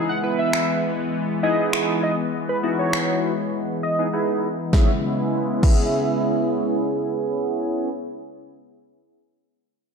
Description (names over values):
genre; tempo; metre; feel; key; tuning
dance-pop; 100 BPM; 4/4; straight; C# minor; A4 = 442 Hz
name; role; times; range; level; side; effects
chorused polysynth; accompaniment; 0.0-7.9 s; B3 to B4; -24 LUFS; right 2 dB; sidechain pumping, low-pass filter
sweeping resonant pad; sustained chords; 0.0-7.9 s; C#3 to E4; -25 LUFS; left 1 dB; chorus, sidechain pumping, low-pass filter
wide unison lead; melody; 0.1-6.5 s; B4 to F#5; -27 LUFS; equal; sidechain pumping, low-pass filter, ping-pong delay
deep house drum kit; drums; 0.5-5.8 s; crash cymbal, finger snaps, kick drum, snare drum; -21 LUFS; equal; overdrive
room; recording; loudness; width
moderate lush hall reverb, RT60 1.9 s; dark, warm production; -20 LUFS; side -6 dB against mid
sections
0.0-4.7 A section; 4.7-7.1 B section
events
filter sweep 0.0-4.7; silent gap 4.1-4.7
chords
0.0 Emaj7; 4.7 C#m7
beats
0.53 1.13 1.73 | 2.33 2.93 3.53 4.13 | 4.73 5.33 5.93 6.53